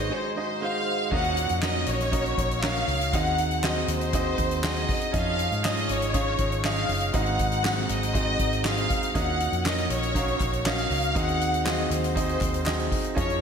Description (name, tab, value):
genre	piano-driven pop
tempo	120 BPM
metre	4/4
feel	straight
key	unclear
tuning	A4 = 440 Hz
part	warm studio violin section	melody	0.0-13.4 s	C5 to Gb5	-28 LUFS	left 2 dB	none
part	clear concert grand piano	accompaniment	0.0-13.4 s	Ab2 to Gb5	-29 LUFS	right 4 dB	none
part	vintage muted fingered electric bass	bass	0.0-13.4 s	Gb1 to Ab2	-29 LUFS	left 1 dB	none
part	soft-mallet drum kit	drums	1.1-13.4 s	crash cymbal, handclaps, hi-hat, kick drum, snare drum	-29 LUFS	left 1 dB	none
part	group handclap	percussion	9.7-12.8 s	none	-43 LUFS	left 7 dB	none
room	wet lush hall reverb, RT60 1.9 s, small room ambience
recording	dreamy mix soaked in reverb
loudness	-23 LUFS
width	side -7 dB against mid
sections	0.0-1.1 A section; 1.1-13.4 B section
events	none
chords	0.0 Ab7; 1.1 Ebm7; 3.1 Ab7/Eb; 5.1 Dbadd9; 7.1 Ab7; 9.1 Ebm7; 11.2 Ab7/Eb